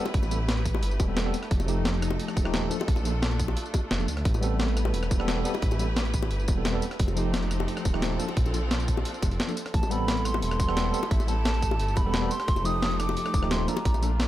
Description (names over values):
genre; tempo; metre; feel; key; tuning
liquid drum and bass; 175 BPM; 4/4; straight; unclear; A4 = 440 Hz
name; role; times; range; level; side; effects
tine electric piano; accompaniment; 0.0-14.1 s; F3 to A4; -32 LUFS; equal; medium stereo tremolo, analog delay
clear studio string section; sustained chords; 0.0-14.3 s; A3 to B4; -36 LUFS; equal; sidechain pumping
dark detuned saw bass; bass; 0.1-14.3 s; Eb1 to D2; -28 LUFS; equal; none
breakbeat sampler-style drum kit; drums; 0.1-14.3 s; hi-hat, rim click, snare drum, tambourine; -32 LUFS; equal; none
electronic kick drum; drums; 0.1-13.9 s; none; -25 LUFS; equal; none
bongos; percussion; 0.1-14.0 s; none; -37 LUFS; left 5 dB; analog delay
breathy mellow silver concert flute; melody; 9.7-14.2 s; E5 to Eb6; -31 LUFS; right 1 dB; analog delay
room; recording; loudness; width
light reverb, digital ambience; echo-heavy mix; -24 LUFS; side -14 dB against mid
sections
0.0-14.3 A section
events
none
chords
0.0 Am9; 1.5 F9; 2.7 Bbmaj7; 4.3 Am9; 7.0 F9; 8.2 Bbmaj7; 9.7 Am9; 12.5 F9; 13.7 Bbmaj7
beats
| 0.14 0.48 0.82 1.17 | 1.51 1.85 2.20 2.54 | 2.88 3.23 3.57 3.91 | 4.25 4.60 4.94 5.28 | 5.62 5.97 6.31 6.65 | 7.00 7.34 7.68 8.03 | 8.37 8.71 9.05 9.40 | 9.74 10.08 10.43 10.77 | 11.11 11.45 11.80 12.14 | 12.48 12.82 13.17 13.51 | 13.85 14.20